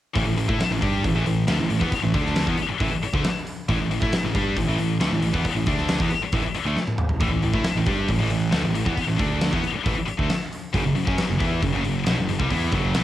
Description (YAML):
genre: hard rock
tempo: 136 BPM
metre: 4/4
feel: straight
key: unclear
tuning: A4 = 441 Hz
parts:
  - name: cranked stack guitar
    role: riff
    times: 0.1-13.0 s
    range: F#2 to G4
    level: -29 LUFS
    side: right 6 dB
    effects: overdrive, cassette tape
  - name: heavy high-gain guitar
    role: riff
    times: 0.1-13.0 s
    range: F#2 to G4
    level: -26 LUFS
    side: left 7 dB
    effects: distortion, cassette tape
  - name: fuzz picked electric bass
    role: bass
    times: 0.2-13.0 s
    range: F#1 to A2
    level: -25 LUFS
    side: equal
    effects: overdrive
  - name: huge arena drum kit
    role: drums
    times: 0.2-13.0 s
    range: hi-hat, kick drum, snare drum, toms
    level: -26 LUFS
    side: equal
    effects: none
room: studio reverb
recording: home recording on cassette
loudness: -20 LUFS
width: side -13 dB against mid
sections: 0.2-13.0 A section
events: drum fill 6.8-7.2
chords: 0.2 A5; 10.7 F#5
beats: | 0.15 0.59 1.04 1.48 | 1.92 2.36 2.80 3.24 | 3.68 4.12 4.56 5.00 | 5.45 5.89 6.33 6.77 | 7.21 7.65 8.09 8.53 | 8.97 9.41 9.86 10.30 | 10.74 11.18 11.62 12.06 | 12.50 12.95